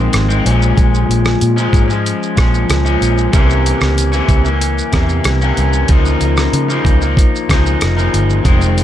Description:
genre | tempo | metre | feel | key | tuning
indie pop, bedroom pop | 94 BPM | 4/4 | straight | unclear | A4 = 440 Hz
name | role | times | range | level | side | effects
electric guitar at the edge of break-up | accompaniment | 0.0-8.8 s | F2 to Eb4 | -16 LUFS | left 2 dB | wide subtle chorus, warbly pitch drift
vintage muted fingered electric bass | bass | 0.0-8.8 s | F1 to Db3 | -15 LUFS | equal | none
dusty soul sampler-style drum kit | drums | 0.1-8.8 s | hi-hat, kick drum, rim click, shaker | -14 LUFS | equal | none
room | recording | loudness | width
light reverb | dark, warm production | -11 LUFS | side -11 dB against mid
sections
0.0-8.8 A section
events
none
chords
0.5 Bbm7; 3.3 C7b9; 5.9 Db69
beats
0.14 | 0.78 1.42 2.06 2.70 | 3.34 3.98 4.62 5.26 | 5.89 6.53 7.17 7.81 | 8.45

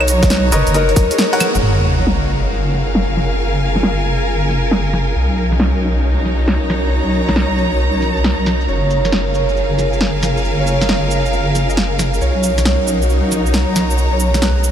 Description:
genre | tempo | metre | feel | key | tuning
UK garage, two-step garage | 136 BPM | 4/4 | swing 66% on 16ths | F# major | A4 = 439 Hz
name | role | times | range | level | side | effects
concert harp | melody | 0.0-3.4, 8.7-14.7 s | G#4 to E#5 | -22 LUFS | right 1 dB | ping-pong delay
soft string machine | sustained chords | 0.0-14.7 s | C#4 to A#5 | -24 LUFS | equal | ensemble chorus, sidechain pumping
deep soft wobble bass | bass | 0.0-14.7 s | F#1 to B1 | -17 LUFS | equal | chorus
punchy analog drum machine | drums | 0.0-14.7 s | cabasa, claves, hi-hat, snare drum | -20 LUFS | equal | overdrive, low-pass filter on hats, low-pass filter on perc, low-pass filter on snare
rich chamber string section | texture | 0.0-14.7 s | D#4 to A#5 | -22 LUFS | equal | sidechain pumping
electronic kick drum | drums | 0.2-1.1 s | none | -13 LUFS | equal | none
bright grand piano | stabs | 0.5-1.5 s | A#4 to F#5 | -22 LUFS | left 1 dB | vintage 12-bit sampler grit, diffuse ambient delay
sub drop | sound effects | 1.6-3.4 s | none | -20 LUFS | equal | none
room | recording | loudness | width
moderate huge ambient reverb, RT60 7.7 s | dreamy mix soaked in reverb | -13 LUFS | side -9 dB against mid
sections
0.0-1.6 A section; 1.6-14.7 B section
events
band accent 1.2; impact 1.6-3.4; filter sweep on drum 1.6-14.7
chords
0.0 Bmaj9; 1.6 F#maj9; 5.2 Bmaj9; 8.7 F#maj9; 12.2 Bmaj9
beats
0.30 0.74 1.18 | 1.62 2.07 2.51 2.95 | 3.39 3.83 4.27 4.71 | 5.15 5.60 6.04 6.48 | 6.92 7.36 7.80 8.24 | 8.68 9.12 9.57 10.01 | 10.45 10.89 11.33 11.77 | 12.21 12.65 13.10 13.54 | 13.98 14.42

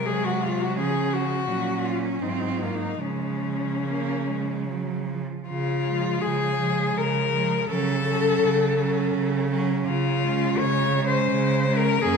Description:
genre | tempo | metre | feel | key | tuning
classical, lyrical piece for cello ensemble | 72-87 BPM | 3/4 | rubato | Db major | A4 = 439 Hz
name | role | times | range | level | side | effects
rich cello | melody | 0.0-12.2 s | Db4 to Db5 | -25 LUFS | left 5 dB | none
rich cello | second line | 0.0-12.2 s | F3 to Db4 | -29 LUFS | right 11 dB | none
rich cello | accompaniment | 0.0-12.2 s | F3 to Bb3 | -30 LUFS | left 3 dB | none
rich cello | bass | 0.0-12.2 s | Gb2 to Db3 | -28 LUFS | right 4 dB | none
room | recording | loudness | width
moderate scoring stage reverb, RT60 1.6 s | none | -22 LUFS | side -5 dB against mid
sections
0.0-5.5 A section; 5.5-12.2 B section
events
none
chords
0.0 Ab7/C; 0.8 Db; 1.5 Gb/Bb; 2.2 Ab7; 3.0 Db; 7.7 Gbm/Db; 9.9 Db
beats
0.06 | 0.76 1.48 2.23 | 3.03 3.86 4.69 | 5.49 6.23 6.97 | 7.69 8.41 9.14 | 9.87 10.60 11.31 | 12.03

